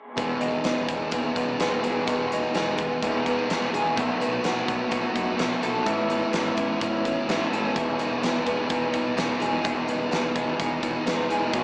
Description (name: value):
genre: rock, shoegaze and dream pop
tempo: 127 BPM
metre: 4/4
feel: straight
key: E major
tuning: A4 = 440 Hz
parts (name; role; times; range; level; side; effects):
- picked twelve-string acoustic guitar; arpeggios; 0.2-11.6 s; E3 to A4; -33 LUFS; equal; subtle chorus, analog delay
- electric guitar through a small old amp; riff; 0.2-11.6 s; E2 to G#4; -29 LUFS; equal; reverse reverb
- thick fuzz guitar; riff; 0.2-11.6 s; E2 to B3; -32 LUFS; equal; distortion, ensemble chorus
- growling picked electric bass; bass; 0.2-11.6 s; E1 to F#2; -38 LUFS; equal; overdrive
- huge arena drum kit; drums; 0.2-11.6 s; hi-hat, kick drum, snare drum; -34 LUFS; equal; none
room: wet plate reverb, RT60 1.7 s, small room ambience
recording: dreamy mix soaked in reverb, small speaker sound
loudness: -25 LUFS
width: mono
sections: 0.2-11.6 A section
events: none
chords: 0.2 Emaj7; 4.0 B7; 5.9 Aadd9; 7.8 Emaj7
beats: | 0.18 0.65 1.13 1.60 | 2.08 2.55 3.02 3.50 | 3.97 4.45 4.92 5.39 | 5.87 6.34 6.81 7.29 | 7.76 8.23 8.71 9.18 | 9.65 10.13 10.60 11.07 | 11.54